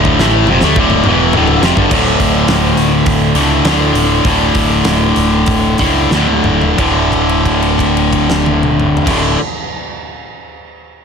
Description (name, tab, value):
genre	heavy metal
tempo	89-105 BPM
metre	4/4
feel	straight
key	unclear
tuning	A4 = 440 Hz
part	distorted electric guitar	riff	0.0-9.4 s	D2 to A3	-11 LUFS	left 1 dB	overdrive
part	growling picked electric bass	bass	0.0-9.4 s	D1 to D2	-18 LUFS	equal	overdrive
part	big rock drum kit	drums	0.1-9.2 s	crash cymbal, hi-hat, kick drum, snare drum, toms	-17 LUFS	equal	soft clipping on snare
room	light reverb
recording	dense, heavily limited modern master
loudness	-10 LUFS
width	side -6 dB against mid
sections	0.0-1.9 A section; 1.9-6.8 B section; 6.8-9.5 C section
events	drum fill 0.0-1.9, 6.1-6.8; slowing down 1.9-6.8; held note 6.8-9.1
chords	0.0 Dm; 1.9 D5